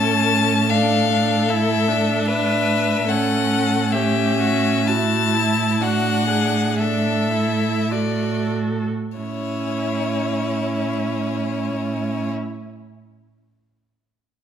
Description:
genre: classical, slow romantic movement for string quartet.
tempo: 45-77 BPM.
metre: 3/4.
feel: rubato.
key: A major.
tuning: A4 = 440 Hz.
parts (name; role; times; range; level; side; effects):
clear violin; melody; 0.0-12.3 s; C#5 to A5; -23 LUFS; left 8 dB; none.
warm violin; second line; 0.0-12.3 s; E4 to B4; -27 LUFS; left 2 dB; none.
clear viola; accompaniment; 0.0-12.3 s; C#4 to F#4; -25 LUFS; right 2 dB; none.
warm cello; bass; 0.0-12.3 s; A2; -22 LUFS; right 3 dB; none.
room: moderate recital hall reverb, RT60 1.6 s.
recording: none.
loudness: -18 LUFS.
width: side -9 dB against mid.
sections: 0.0-9.2 A section; 9.2-12.9 B section.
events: slowing down 1.9-9.2.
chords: 0.0 A; 0.7 Dm/A; 3.1 A; 5.8 D/A; 9.2 A.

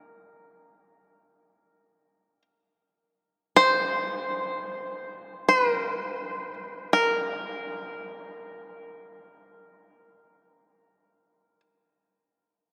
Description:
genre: caucasian folk.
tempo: free time.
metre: none.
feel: none.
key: unclear.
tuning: A4 = 438 Hz.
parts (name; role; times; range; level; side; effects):
bluegrass banjo; melody; 0.0-11.6 s; Bb4 to C5; -26 LUFS; equal; none.
room: wet cathedral reverb, RT60 5.5 s.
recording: in a vast, echoing space.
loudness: -26 LUFS.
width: mono.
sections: 0.0-6.9 A section; 6.9-12.0 B section.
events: slowing down 0.0-6.9.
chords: none.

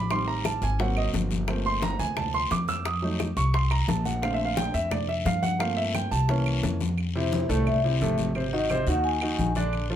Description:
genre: Afro-Cuban jazz.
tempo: 175 BPM.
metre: 4/4.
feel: straight.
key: F major.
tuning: A4 = 440 Hz.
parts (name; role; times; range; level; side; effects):
warm baby grand piano; accompaniment; 0.0-10.0 s; A2 to E6; -27 LUFS; right 2 dB; none.
upright bass; bass; 0.0-10.0 s; G1 to G2; -28 LUFS; equal; none.
bongos; percussion; 0.1-7.0 s; none; -35 LUFS; left 6 dB; none.
claves; percussion; 0.1-9.9 s; none; -38 LUFS; right 8 dB; none.
congas; percussion; 0.1-10.0 s; none; -32 LUFS; left 2 dB; none.
guiro; percussion; 0.1-10.0 s; none; -39 LUFS; left 7 dB; none.
vibraphone with soft mallets; melody; 7.2-9.5 s; C5 to Ab5; -29 LUFS; left 3 dB; plate reverb.
room: moderate club reverb, RT60 0.6 s.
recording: none.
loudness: -23 LUFS.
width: side -10 dB against mid.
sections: 0.0-7.0 A section; 7.0-10.0 A section.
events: grand piano solo 0.0-7.0; vibraphone solo 7.0-10.0.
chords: 0.1 Am7b5; 0.8 Ab9; 1.5 Gm11; 2.9 F7b9; 4.2 Bbmaj7; 5.6 Gm11; 6.3 C7b9; 7.0 Fmaj7; 8.4 Ab9.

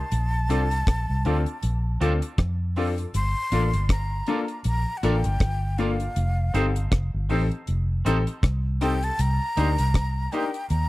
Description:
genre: lovers rock reggae.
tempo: 79 BPM.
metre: 4/4.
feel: swing 57% on 16ths.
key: Bb major.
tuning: A4 = 442 Hz.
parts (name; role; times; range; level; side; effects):
breathy jazz flute; melody; 0.0-10.9 s; F5 to C6; -30 LUFS; left 1 dB; tape echo.
vintage muted fingered electric bass; bass; 0.0-10.9 s; F1 to F2; -24 LUFS; equal; none.
deep reggae drum kit; drums; 0.1-10.9 s; hi-hat, kick drum, rim click; -24 LUFS; equal; none.
warm baby grand piano; accompaniment; 0.5-10.5 s; Bb3 to Bb4; -27 LUFS; left 4 dB; none.
twangy electric guitar; stabs; 0.5-10.4 s; Bb3 to D5; -33 LUFS; right 4 dB; spring reverb.
room: little or no reverb.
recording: dry, close 1970s-style studio recording.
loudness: -22 LUFS.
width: side -18 dB against mid.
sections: 0.0-10.9 A section.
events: none.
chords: 0.1 Bbmaj9; 3.1 Gm7; 6.2 F7; 9.2 Cm7.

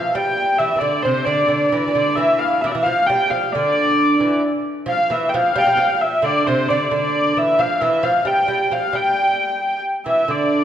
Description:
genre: medieval dance.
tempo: 89 BPM (dotted quarters).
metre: 6/8.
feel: straight.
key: unclear.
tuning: A4 = 440 Hz.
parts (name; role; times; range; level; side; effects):
warm hurdy-gurdy; melody; 0.0-10.6 s; C5 to G5; -17 LUFS; equal; none.
lute; second line; 0.0-10.6 s; C3 to G3; -22 LUFS; right 2 dB; none.
room: wet scoring stage reverb, RT60 1.8 s.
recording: dark, warm production.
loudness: -16 LUFS.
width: side -10 dB against mid.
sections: 0.0-10.3 A section.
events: none.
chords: none.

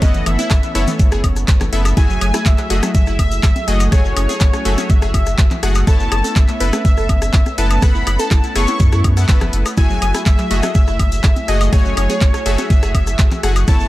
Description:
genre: progressive house.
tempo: 123 BPM.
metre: 4/4.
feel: straight.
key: F# minor.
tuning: A4 = 440 Hz.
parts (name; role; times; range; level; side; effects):
wide unison lead; melody; 0.0-13.9 s; C#5 to C#6; -23 LUFS; equal; wide subtle chorus, sidechain pumping, digital delay.
warm analog pad; sustained chords; 0.0-13.9 s; F#3 to G#4; -28 LUFS; equal; chorus, sidechain pumping.
wide unison pluck; arpeggios; 0.0-13.9 s; E3 to B4; -26 LUFS; right 1 dB; cassette tape, sidechain pumping, digital delay.
supersaw stab; stabs; 0.0-13.9 s; A3 to G#5; -24 LUFS; left 3 dB; sidechain pumping, digital delay.
saturated sub bass; bass; 0.0-13.9 s; F#1 to F#2; -18 LUFS; equal; sidechain pumping.
electronic kick drum; drums; 0.0-13.8 s; none; -13 LUFS; equal; overdrive.
pop drum kit; drums; 0.0-13.8 s; handclaps, hi-hat, woodblock; -24 LUFS; left 1 dB; overdrive.
electronic rim click and congas; percussion; 0.0-13.8 s; none; -27 LUFS; left 2 dB; sidechain pumping on snare, sidechain pumping on perc.
maracas; percussion; 0.0-13.9 s; none; -32 LUFS; left 4 dB; none.
room: little or no reverb.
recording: none.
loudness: -12 LUFS.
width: side -16 dB against mid.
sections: 0.0-13.9 A section.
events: none.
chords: 0.0 Aadd9/F#; 2.0 F#m9; 5.9 Aadd9/F#; 9.8 F#m9.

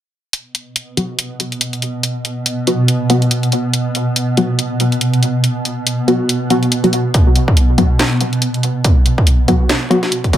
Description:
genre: deep dubstep.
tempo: 141 BPM.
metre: 4/4.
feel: swing 57% on 16ths, half-time.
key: unclear.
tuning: A4 = 441 Hz.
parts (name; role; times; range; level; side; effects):
granular cloud pad; sustained chords; 1.1-10.4 s; B2; -17 LUFS; right 1 dB; built-in reverb.
garage drum kit; drums; 0.3-10.4 s; hi-hat, snare drum; -18 LUFS; equal; none.
filtered dub chord stab; stabs; 1.0-10.0 s; F#3 to F#4; -17 LUFS; left 1 dB; chorus, cassette tape, dub echo.
electronic kick drum; drums; 7.1-10.4 s; none; -12 LUFS; equal; none.
room: moderate spring reverb, RT60 1.4 s.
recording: none.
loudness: -13 LUFS.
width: side -12 dB against mid.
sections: 0.3-10.4 A section.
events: filter sweep on synth stab 0.3-10.4.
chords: 0.3 B5.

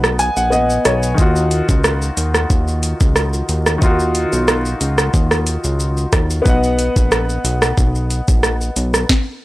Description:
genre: dancehall.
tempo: 91 BPM.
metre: 4/4.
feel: straight.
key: Eb minor.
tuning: A4 = 440 Hz.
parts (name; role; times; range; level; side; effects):
clear grand piano; accompaniment; 0.0-9.1 s; Eb3 to Ab5; -20 LUFS; left 1 dB; none.
fat analog bass; bass; 0.0-9.1 s; Bb1 to Eb2; -18 LUFS; equal; none.
island pop drum kit; drums; 0.0-9.3 s; hi-hat, kick drum, rim click, shaker, snare drum; -16 LUFS; equal; overdrive.
room: little or no reverb.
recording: dry, gritty hardware recording.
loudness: -14 LUFS.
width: side -18 dB against mid.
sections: 0.0-9.4 A section.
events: break 0.0-1.2; grand piano fill 0.0-1.2.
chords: 0.0 B; 1.2 Ebmadd9; 6.5 B.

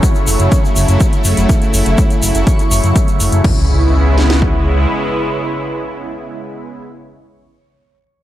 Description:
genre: progressive house.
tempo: 123 BPM.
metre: 4/4.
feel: straight.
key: C# minor.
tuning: A4 = 441 Hz.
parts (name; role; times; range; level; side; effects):
supersaw pad; sustained chords; 0.0-6.8 s; C#3 to E4; -18 LUFS; equal; phaser, sidechain pumping.
house drum kit; drums; 0.0-4.5 s; kick drum, snare drum; -14 LUFS; equal; overdrive.
house drum kit; drums; 0.0-3.5 s; crash cymbal, hi-hat; -24 LUFS; equal; overdrive.
tube shaker; percussion; 0.0-3.4 s; none; -24 LUFS; left 2 dB; none.
backwards swelling texture; texture; 0.0-3.5 s; C#5 to C#6; -28 LUFS; right 2 dB; built-in reverb, sidechain pumping.
fat analog bass; bass; 0.3-4.9 s; F#1 to F#2; -13 LUFS; equal; sidechain pumping.
impact; sound effects; 3.4-6.9 s; none; -23 LUFS; equal; none.
room: digital ambience.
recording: dark, warm production.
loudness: -11 LUFS.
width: side -13 dB against mid.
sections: 0.0-3.4 A section; 3.4-7.3 B section.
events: none.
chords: 0.0 F#m7; 3.4 C#m7.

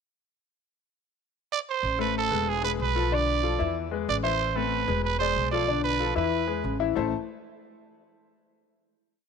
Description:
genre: latin, salsa.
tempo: 187 BPM.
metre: 4/4.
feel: straight.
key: A harmonic minor.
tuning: A4 = 440 Hz.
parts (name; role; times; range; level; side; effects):
growling trumpet; melody; 1.5-6.8 s; G#4 to D5; -27 LUFS; right 10 dB; none.
upright bass; bass; 1.8-7.1 s; E1 to E2; -31 LUFS; right 1 dB; none.
clear grand piano; accompaniment; 2.0-7.1 s; D3 to A5; -28 LUFS; left 12 dB; none.
room: light reverb.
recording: 1960s-style stereo with parts hard left and right.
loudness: -24 LUFS.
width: side -6 dB against mid.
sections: 0.5-1.8 pickup bar; 1.8-7.0 montuno (vamp); 7.0-8.3 final chord.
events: none.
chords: 0.5 N.C.; 1.8 Am; 2.5 E; 3.1 Bm7b5; 3.8 E; 4.4 Am; 5.0 E7; 5.7 Bm7b5; 6.3 E; 7.0 A5.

